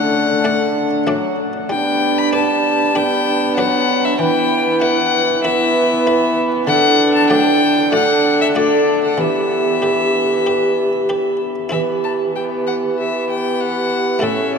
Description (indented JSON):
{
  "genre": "classical, renaissance-style consort dance",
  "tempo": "96 BPM",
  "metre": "4/4",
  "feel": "straight",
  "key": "E minor",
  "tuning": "A4 = 440 Hz",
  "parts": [
    { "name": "warm violin", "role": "melody", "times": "0.0-14.6 s", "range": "D5 to B5", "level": "-19 LUFS", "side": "left 4 dB", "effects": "none" },
    { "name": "mellow hollow tenor recorder", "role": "second line", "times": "0.0-14.6 s", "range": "D4 to A4", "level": "-20 LUFS", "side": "right 2 dB", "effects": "none" },
    { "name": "buff-stop harpsichord", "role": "accompaniment", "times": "0.0-14.6 s", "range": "A2 to D5", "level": "-26 LUFS", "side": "left 1 dB", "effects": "none" },
    { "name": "warm viola", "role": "accompaniment", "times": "0.0-14.6 s", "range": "A3 to D4", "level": "-21 LUFS", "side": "left 1 dB", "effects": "none" },
    { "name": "mellow bassoon", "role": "bass", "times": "0.0-14.6 s", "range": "A2 to G3", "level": "-22 LUFS", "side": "right 2 dB", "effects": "none" }
  ],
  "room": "wet cathedral reverb, RT60 7.0 s",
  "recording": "minimal, uncompressed stereo recording",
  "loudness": "-14 LUFS",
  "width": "side -5 dB against mid",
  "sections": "0.0-11.7 A section; 11.7-14.6 B section",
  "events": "none",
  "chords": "0.0 D; 1.7 G; 4.2 Em; 6.7 D; 9.2 Em"
}